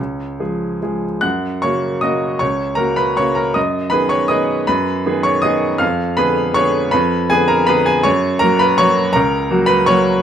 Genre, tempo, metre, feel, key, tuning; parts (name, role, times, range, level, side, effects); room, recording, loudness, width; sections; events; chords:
classical, piano waltz; 139-174 BPM; 3/4; rubato; F# major; A4 = 440 Hz
clear baby grand piano; solo; 0.0-10.2 s; C#2 to F#6; -14 LUFS; equal
light reverb; -14 LUFS; side -9 dB against mid
0.0-1.2 A section; 1.2-10.2 B section
0.0 C#; 1.2 F#; 3.6 G#m7/F#; 5.8 Fdim7; 8.1 F#